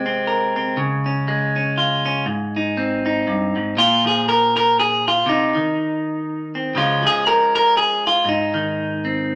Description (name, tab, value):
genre	folk, solo fingerstyle acoustic guitar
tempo	120 BPM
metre	3/4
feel	swing 57% on 8ths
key	Bb minor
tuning	A4 = 440 Hz
part	clean electric guitar	solo	0.0-9.4 s	G2 to Bb4	-19 LUFS	equal	none
room	wet large studio reverb, RT60 0.9 s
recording	none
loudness	-19 LUFS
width	mono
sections	0.0-3.8 A section; 3.8-9.4 B section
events	none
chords	0.0 Ab/C; 0.8 Db; 2.3 Ab; 3.8 Bb5; 5.3 Cm; 6.8 Db; 8.3 Ab